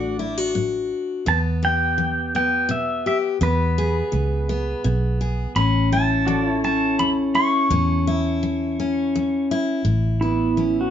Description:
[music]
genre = honky-tonk and classic country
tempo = 84 BPM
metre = 3/4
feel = straight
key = unclear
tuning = A4 = 439 Hz
[part]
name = pedal steel guitar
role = melody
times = 0.0-10.9 s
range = E4 to C#6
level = -23 LUFS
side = right 1 dB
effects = none
[part]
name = picked steel-string acoustic guitar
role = accompaniment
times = 0.0-10.9 s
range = E2 to G#4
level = -23 LUFS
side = left 2 dB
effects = none
[part]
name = pedal steel guitar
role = sustained chords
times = 0.0-1.2, 6.3-9.8 s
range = E4 to D5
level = -30 LUFS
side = right 3 dB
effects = none
[part]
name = vintage muted fingered electric bass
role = bass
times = 0.0-10.9 s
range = A1 to E2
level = -23 LUFS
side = equal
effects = none
[sound]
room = moderate studio reverb, RT60 0.7 s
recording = dark, warm production, nothing above 7.7 kHz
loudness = -19 LUFS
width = side -9 dB against mid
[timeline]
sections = 0.0-1.3 A section; 1.3-9.8 B section; 9.8-10.9 A section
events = none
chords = 0.0 D; 1.3 Em; 3.4 E; 5.6 A; 9.8 Aadd9

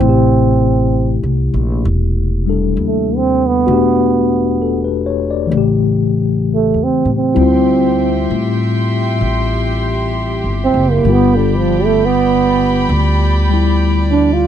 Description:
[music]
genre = jazz ballad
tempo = 65 BPM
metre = 4/4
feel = swing 67% on 8ths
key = unclear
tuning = A4 = 439 Hz
[part]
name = trombone with bucket mute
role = melody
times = 0.0-14.5 s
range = D3 to F4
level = -14 LUFS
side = right 6 dB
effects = none
[part]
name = mellow tine electric piano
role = accompaniment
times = 0.0-14.5 s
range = C3 to D5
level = -17 LUFS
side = left 9 dB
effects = medium stereo tremolo
[part]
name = upright bass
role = bass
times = 0.0-14.5 s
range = E1 to A2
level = -17 LUFS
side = equal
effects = none
[part]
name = warm studio string section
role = sustained chords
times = 7.4-14.5 s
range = G4 to C6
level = -22 LUFS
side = right 1 dB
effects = none
[sound]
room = little or no reverb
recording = dry, close 1970s-style studio recording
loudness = -12 LUFS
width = side -9 dB against mid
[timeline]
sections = 0.0-14.5 A section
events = trombone solo 0.0-14.5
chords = 0.0 Am7; 3.7 Em11; 5.5 A7; 7.4 Dm11; 11.1 G7

